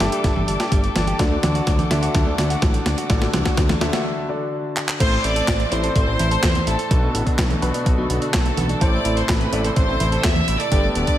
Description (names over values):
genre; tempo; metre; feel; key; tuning
italo disco; 126 BPM; 4/4; straight; A dorian; A4 = 441 Hz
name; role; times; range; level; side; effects
dark chamber string section; sustained chords; 0.0-11.2 s; C3 to D6; -28 LUFS; equal; none
direct-recorded clean electric guitar; arpeggios; 0.0-11.2 s; F#3 to A4; -30 LUFS; right 2 dB; low-pass filter, tape echo
warm grand piano; stabs; 0.0-11.2 s; G2 to E5; -26 LUFS; left 1 dB; none
fat analog bass; bass; 0.0-11.0 s; D1 to E2; -24 LUFS; equal; tube saturation
clean 12-bit digital drum machine; drums; 0.0-11.2 s; congas, crash cymbal, handclaps, hi-hat, snare drum; -24 LUFS; equal; studio reverb, gated reverb
electronic kick drum; drums; 0.2-11.2 s; none; -20 LUFS; equal; studio reverb
rich studio violin section; melody; 5.0-11.2 s; A4 to E6; -24 LUFS; equal; tape echo
room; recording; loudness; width
light reverb, digital ambience; none; -17 LUFS; side -12 dB against mid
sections
0.0-5.0 A section; 5.0-11.2 B section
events
drum fill 0.0-4.1, 4.8; break 4.1-5.0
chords
0.0 Gsus2; 1.2 D; 5.0 Am; 6.9 Bm7; 8.8 Am